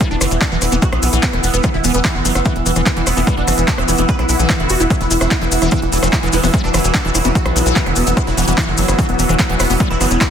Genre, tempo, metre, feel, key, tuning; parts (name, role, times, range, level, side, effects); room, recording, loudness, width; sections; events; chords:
psychedelic trance; 147 BPM; 4/4; straight; A4 = 439 Hz
supersaw stab; melody; 0.0-10.3 s; E3 to B4; -22 LUFS; right 1 dB; phaser, cassette tape, sidechain pumping, ping-pong delay
bubbling stepped-filter texture; sustained chords; 0.0-10.3 s; E3 to B3; -23 LUFS; equal; chorus, built-in reverb, sidechain pumping
liquid acid bass; riff; 0.0-10.2 s; D3 to E4; -23 LUFS; moving between left 4 dB and right 3 dB; phaser, auto-pan, sidechain pumping, dub echo
big-room dance drum kit; drums; 0.0-10.3 s; handclaps, hi-hat, rim click; -22 LUFS; right 1 dB; overdrive
electronic kick drum; drums; 0.0-10.3 s; -18 LUFS; equal; overdrive
maracas; percussion; 0.0-10.3 s; -23 LUFS; left 5 dB
warbly tape-like pad; texture; 0.0-10.3 s; E4 to E6; -23 LUFS; right 1 dB; chorus, built-in reverb, sidechain pumping
tight sequencer bass; bass; 0.1-10.2 s; E1 to B1; -18 LUFS; equal; tube saturation
light reverb, digital ambience; dense, heavily limited modern master; -13 LUFS; side -8 dB against mid
0.0-10.3 A section
0.0 E5